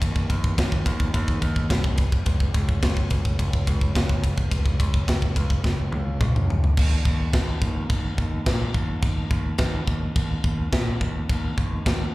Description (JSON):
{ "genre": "heavy metal", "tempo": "106 BPM", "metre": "4/4", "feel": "straight", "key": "unclear", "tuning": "A4 = 442 Hz", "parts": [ { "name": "growling picked electric bass", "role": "bass", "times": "0.0-12.1 s", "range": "C2 to Bb2", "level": "-25 LUFS", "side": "equal", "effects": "overdrive" }, { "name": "tight metal drum kit", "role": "drums", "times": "0.0-12.0 s", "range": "crash cymbal, kick drum, ride cymbal, snare drum, toms", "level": "-23 LUFS", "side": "equal", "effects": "none" } ], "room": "little or no reverb", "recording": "live gig heard through the venue's PA, club reverb", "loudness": "-21 LUFS", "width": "side -19 dB against mid", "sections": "0.0-6.8 A section; 6.8-12.1 B section", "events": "drum fill 5.6-6.8", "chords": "none" }